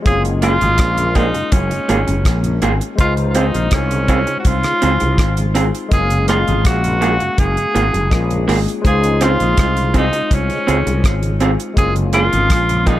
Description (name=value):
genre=lovers rock reggae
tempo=82 BPM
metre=4/4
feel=straight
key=unclear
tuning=A4 = 441 Hz
part: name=barky tine electric piano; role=accompaniment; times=0.0-13.0 s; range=Ab3 to F5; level=-24 LUFS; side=left 4 dB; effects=overdrive, tube saturation, analog chorus, tape echo
part: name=clear tenor saxophone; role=melody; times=0.1-13.0 s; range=Db4 to Ab4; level=-19 LUFS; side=equal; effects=tape echo
part: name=fretless electric bass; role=bass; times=0.1-13.0 s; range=Gb1 to Db2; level=-18 LUFS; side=equal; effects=lush chorus
part: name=damped 70s drum kit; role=drums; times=0.1-13.0 s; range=hi-hat, kick drum, rim click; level=-18 LUFS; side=equal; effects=none
part: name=mellow tonewheel organ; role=accompaniment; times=0.2-13.0 s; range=Gb2 to F4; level=-28 LUFS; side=right 2 dB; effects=none
part: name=electric guitar through a small old amp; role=stabs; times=0.4-13.0 s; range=Bb3 to Ab4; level=-22 LUFS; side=right 2 dB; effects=tape echo
room=studio reverb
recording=none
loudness=-13 LUFS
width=side -14 dB against mid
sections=0.0-13.0 A section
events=none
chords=0.1 Gbmaj9; 3.0 Dbmaj7; 5.9 Gbmaj9; 8.8 Dbmaj7; 11.8 Gbmaj9